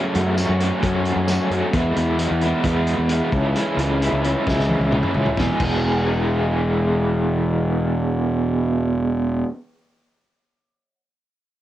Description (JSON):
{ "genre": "indie rock", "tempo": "132 BPM", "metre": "4/4", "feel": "straight", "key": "E major", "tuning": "A4 = 439 Hz", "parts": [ { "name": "crunchy overdriven guitar", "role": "riff", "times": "0.0-9.5 s", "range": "E2 to G#4", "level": "-21 LUFS", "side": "right 1 dB", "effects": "tremolo, cassette tape" }, { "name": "loose indie drum kit", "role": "drums", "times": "0.1-5.7 s", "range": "crash cymbal, hi-hat, kick drum, snare drum, tambourine, toms", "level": "-28 LUFS", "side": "equal", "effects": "cassette tape" }, { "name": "fuzz fingered electric bass", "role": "bass", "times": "0.2-9.4 s", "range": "E1 to F#2", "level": "-22 LUFS", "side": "equal", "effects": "overdrive" } ], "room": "small room ambience", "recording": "home recording on cassette", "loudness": "-18 LUFS", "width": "side -13 dB against mid", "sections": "0.0-5.4 A section; 5.4-9.0 B section", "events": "drum fill 4.5-5.4", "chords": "0.0 F#m; 1.7 E; 3.3 C#m; 5.4 E" }